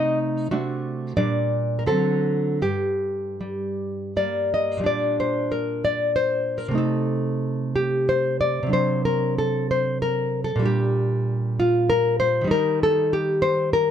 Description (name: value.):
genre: romantic piece for solo classical guitar.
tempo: 75-101 BPM.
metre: 3/4.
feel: rubato.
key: G minor.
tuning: A4 = 440 Hz.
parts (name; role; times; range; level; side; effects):
nylon-string guitar; solo; 0.0-13.9 s; G2 to Eb5; -20 LUFS; equal; none.
room: light reverb.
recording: none.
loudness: -20 LUFS.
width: side -9 dB against mid.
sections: 0.0-4.9 A section; 4.9-13.9 B section.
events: none.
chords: 0.0 Adim/C; 0.5 D7/C; 1.2 Gm/Bb; 1.9 D7; 2.6 Gm; 4.9 Gm/Bb; 6.8 Adim/C; 8.7 D7/C; 10.7 Gm/Bb; 12.5 Eb.